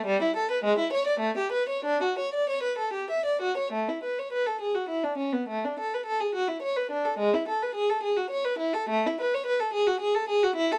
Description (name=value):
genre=classical, baroque-style suite movement for unaccompanied violin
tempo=89-109 BPM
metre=3/4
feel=rubato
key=D major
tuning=A4 = 439 Hz
part: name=warm violin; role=solo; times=0.0-10.8 s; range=G3 to E5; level=-28 LUFS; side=equal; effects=none
room=light reverb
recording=dark, warm production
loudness=-28 LUFS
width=mono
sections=0.0-3.7 A section; 3.7-10.8 A section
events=none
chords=none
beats=| 0.07 0.64 1.23 | 1.86 2.49 3.10 | 3.73 4.31 4.88 | 5.48 6.07 6.63 | 7.19 7.75 8.31 | 8.88 9.46 10.01 | 10.57